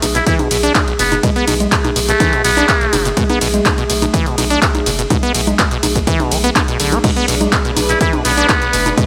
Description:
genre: acid house.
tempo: 124 BPM.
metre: 4/4.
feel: straight.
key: B dorian.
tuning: A4 = 437 Hz.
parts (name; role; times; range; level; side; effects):
warbly tape-like pad; sustained chords; 0.0-9.1 s; A3 to G#4; -24 LUFS; equal; chorus, built-in reverb, sidechain pumping.
acid bass, saw; riff; 0.0-9.0 s; B1 to D4; -22 LUFS; equal; tube saturation, sidechain pumping, tape echo.
saturated sub bass; bass; 0.0-8.9 s; F#1 to B1; -24 LUFS; equal; sidechain pumping.
punchy analog drum machine; drums; 0.0-9.1 s; congas, crash cymbal, handclaps, hi-hat, ride cymbal, shaker; -20 LUFS; equal; none.
trumpet with metal mute; melody; 0.2-3.1, 7.9-8.9 s; A3 to E4; -20 LUFS; equal; tape echo.
electronic kick drum; drums; 0.3-9.1 s; none; -20 LUFS; equal; none.
rich chamber string section; texture; 7.0-9.1 s; D4 to B4; -26 LUFS; equal; sidechain pumping.
room: light reverb.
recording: none.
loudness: -14 LUFS.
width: mono.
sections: 0.0-9.1 A section.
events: none.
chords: 0.0 Bm7.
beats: 0.27 0.75 | 1.23 1.72 2.20 2.69 | 3.17 3.65 4.14 4.62 | 5.11 5.59 6.07 6.56 | 7.04 7.52 8.01 8.49 | 8.98.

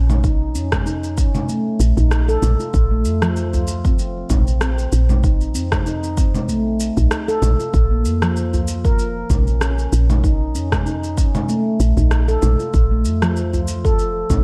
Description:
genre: organic downtempo.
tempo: 96 BPM.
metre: 4/4.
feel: swing 55% on 16ths.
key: Bb harmonic minor.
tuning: A4 = 440 Hz.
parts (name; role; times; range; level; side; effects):
handpan; arpeggios; 0.0-14.4 s; F3 to Bb4; -25 LUFS; equal; low-pass filter, digital delay.
woody FM bass; bass; 0.0-14.4 s; F1 to F2; -21 LUFS; equal; tube saturation, sidechain pumping.
electronic congas, shaker and rim click; drums; 0.1-14.4 s; none; -27 LUFS; equal; none.
electronic kick drum; drums; 0.2-14.4 s; none; -20 LUFS; equal; none.
udu; percussion; 2.0-14.4 s; none; -26 LUFS; equal; none.
room: moderate recital hall reverb, RT60 1.5 s.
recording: dark, warm production.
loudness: -18 LUFS.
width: mono.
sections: 0.0-14.4 A section.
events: none.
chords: 0.2 Eb5/Bb; 2.7 F5/Bb; 5.2 Bbsus24; 7.7 Bbm; 10.2 Eb5/Bb; 12.7 F/Bb.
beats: | 0.24 0.86 1.49 2.11 | 2.74 3.36 3.99 4.61 | 5.24 5.86 6.49 7.11 | 7.74 8.36 8.99 9.61 | 10.24 10.86 11.49 12.11 | 12.74 13.36 13.99.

